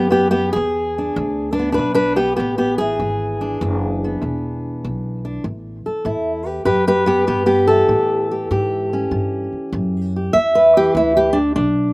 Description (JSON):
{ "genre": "blues", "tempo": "98 BPM", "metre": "4/4", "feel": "swing 67% on 8ths", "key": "unclear", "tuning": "A4 = 438 Hz", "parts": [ { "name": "fingerpicked steel-string acoustic guitar", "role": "melody", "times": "0.0-11.9 s", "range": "E2 to E5", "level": "-16 LUFS", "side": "equal", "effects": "none" }, { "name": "upright bass", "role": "bass", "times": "0.0-11.9 s", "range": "E1 to A2", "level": "-24 LUFS", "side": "equal", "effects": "none" } ], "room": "light reverb", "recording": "recorded outdoors, with no room sound", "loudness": "-16 LUFS", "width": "side -24 dB against mid", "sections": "0.0-11.9 A section", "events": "none", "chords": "0.0 E7; 5.4 A7; 10.3 E7(no3)" }